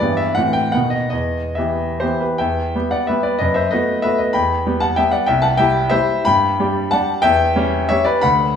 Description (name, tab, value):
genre	classical, romantic triple-time dance for piano with dotted rhythms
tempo	124-204 BPM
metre	3/4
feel	rubato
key	E minor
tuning	A4 = 439 Hz
part	bright baby grand piano	solo	0.0-8.6 s	C2 to B5	-15 LUFS	left 1 dB	none
room	wet recital hall reverb, RT60 1.4 s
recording	studio ambience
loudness	-15 LUFS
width	side -7 dB against mid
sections	0.0-2.4 A section; 2.4-8.6 B section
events	none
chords	0.0 Em/G; 0.4 F#m7b5/A; 0.7 B; 1.1 Em; 3.4 B7/F#; 4.4 Em; 5.3 C; 6.3 G; 7.2 C#dim/E